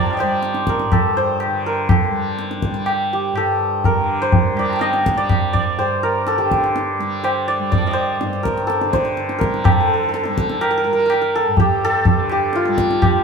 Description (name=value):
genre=indian classical, Hindustani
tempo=124 BPM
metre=4/4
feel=straight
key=G raga darbari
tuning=A4 = 440 Hz
part: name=santur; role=melody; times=0.0-13.2 s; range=F4 to Eb6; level=-19 LUFS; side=right 1 dB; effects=none
part: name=tanpura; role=drone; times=0.0-13.2 s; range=G2 to G3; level=-26 LUFS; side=left 1 dB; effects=none
part: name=tabla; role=percussion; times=0.2-13.2 s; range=none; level=-19 LUFS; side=equal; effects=none
room=moderate stone room reverb, RT60 1.0 s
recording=band playing live in one room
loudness=-16 LUFS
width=side -5 dB against mid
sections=0.0-9.7 A section; 9.7-13.2 B section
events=none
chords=none